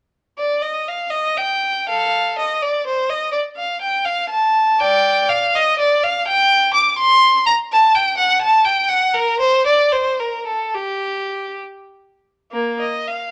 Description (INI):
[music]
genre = classical, baroque-style suite movement for unaccompanied violin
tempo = 62-85 BPM (dotted quarters)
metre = 6/8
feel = rubato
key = G minor from 6.3 s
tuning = A4 = 440 Hz
[part]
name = rich violin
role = solo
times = 0.4-13.3 s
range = Bb3 to D6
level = -17 LUFS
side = equal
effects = none
[sound]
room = light reverb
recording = none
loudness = -17 LUFS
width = mono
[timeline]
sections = 0.4-12.5 A section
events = none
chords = none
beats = | 0.38 1.13 | 1.88 2.62 | 3.34 4.07 | 4.81 5.53 | 6.26 6.99 | 7.71 8.43 | 9.17 9.94 | 10.77 11.63 | 12.53